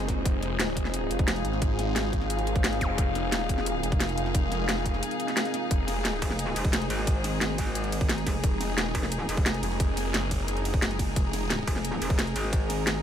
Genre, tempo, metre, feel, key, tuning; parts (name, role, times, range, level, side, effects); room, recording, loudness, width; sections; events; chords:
dark technical drum and bass; 176 BPM; 4/4; straight; F minor; A4 = 440 Hz
deep dark ambient pad; sustained chords; 0.0-13.0 s; Ab3 to Eb5; -34 LUFS; right 1 dB; chorus, built-in reverb, sidechain pumping
phased detuned saw bass; bass; 0.0-6.2, 8.4-11.7 s; F1 to Ab1; -31 LUFS; equal; phaser
drum and bass drum kit; drums; 0.0-12.9 s; hi-hat, ride cymbal, snare drum; -31 LUFS; equal; overdrive
muted studio string section; texture; 0.0-13.0 s; Eb4 to F5; -33 LUFS; left 3 dB; sidechain pumping
electronic kick drum; drums; 0.1-12.6 s; -27 LUFS; equal; overdrive
zap; sound effects; 2.8-2.9 s; -37 LUFS; equal
metallic wobble bass; bass; 6.2-9.6, 11.7-13.0 s; F1 to Ab1; -31 LUFS; equal; chorus
light reverb; -25 LUFS; side -9 dB against mid
0.0-13.0 A section
0.0 Fm